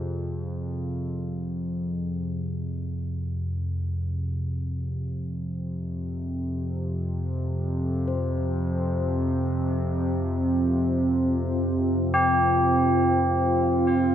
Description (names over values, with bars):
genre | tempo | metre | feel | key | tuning
dark ambient drone | free time | none | none | F minor | A4 = 440 Hz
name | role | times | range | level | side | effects
analog drone | drone | 0.0-14.1 s | F2 to C3 | -26 LUFS | equal | chorus
bronze singing bowl | texture | 0.0-14.1 s | Ab4 to C5 | -40 LUFS | left 6 dB | none
deep dark ambient pad | sustained chords | 8.9-14.1 s | C4 to F5 | -25 LUFS | equal | chorus, built-in reverb
tubular bells | arpeggios | 12.1-14.1 s | G4 | -22 LUFS | equal | tape echo
room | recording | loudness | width
wet cathedral reverb, RT60 5.1 s | none | -24 LUFS | side -10 dB against mid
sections
0.0-14.1 A section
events
fade-out on singing bowl 0.0-14.1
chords
0.0 F5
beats
free time